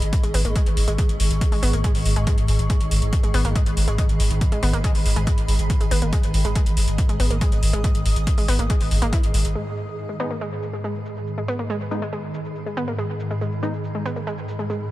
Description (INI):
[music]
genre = driving peak-time techno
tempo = 140 BPM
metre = 4/4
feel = straight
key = G# minor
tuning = A4 = 441 Hz
[part]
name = saturated sub bass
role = bass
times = 0.0-9.6 s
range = G#1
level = -22 LUFS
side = equal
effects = tube saturation, sidechain pumping, low-pass filter
[part]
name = swarming drone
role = drone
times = 0.0-14.9 s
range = G#2 to D#3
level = -28 LUFS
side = equal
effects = built-in reverb, sidechain pumping
[part]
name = electronic hi-hat and shaker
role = drums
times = 0.0-14.8 s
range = none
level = -31 LUFS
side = left 1 dB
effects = low-pass filter on hats, low-pass filter on perc, low-pass filter on room
[part]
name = granular cloud pad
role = texture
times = 0.0-14.9 s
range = G#4 to D#6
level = -32 LUFS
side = right 1 dB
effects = built-in reverb, sidechain pumping
[part]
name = electronic kick drum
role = drums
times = 0.1-9.2 s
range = none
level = -21 LUFS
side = equal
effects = none
[part]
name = analog pluck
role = riff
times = 0.2-14.8 s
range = G#3 to E4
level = -29 LUFS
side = equal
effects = chorus, overdrive, cassette tape, sidechain pumping, dub echo
[part]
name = rave stab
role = stabs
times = 10.2-13.7 s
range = G#3 to D#4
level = -33 LUFS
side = left 1 dB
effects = chorus, built-in reverb, sidechain pumping, dub echo
[sound]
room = little or no reverb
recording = none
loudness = -19 LUFS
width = side -16 dB against mid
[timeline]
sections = 0.0-9.6 A section; 9.6-14.9 B section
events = none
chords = 0.0 G#m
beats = 0.13 0.56 | 0.98 1.41 1.84 2.27 | 2.70 3.13 3.56 3.98 | 4.41 4.84 5.27 5.70 | 6.13 6.56 6.98 7.41 | 7.84 8.27 8.70 9.13 | 9.56 9.98 10.41 10.84 | 11.27 11.70 12.13 12.56 | 12.98 13.41 13.84 14.27 | 14.70